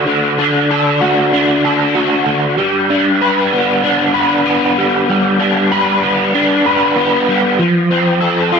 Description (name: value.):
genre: rock.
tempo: 95 BPM.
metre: 4/4.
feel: straight.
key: G major.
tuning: A4 = 437 Hz.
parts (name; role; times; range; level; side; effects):
crunchy overdriven guitar; solo; 0.0-8.6 s; D3 to B4; -11 LUFS; equal; rotary speaker.
room: moderate echo chamber reverb, RT60 1.9 s.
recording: none.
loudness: -11 LUFS.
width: side -6 dB against mid.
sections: 0.0-8.6 A section.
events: none.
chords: 0.0 D; 2.6 G; 7.6 F.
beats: | 0.07 0.70 1.32 1.95 | 2.58 3.21 3.84 4.47 | 5.10 5.72 6.35 6.98 | 7.61 8.24.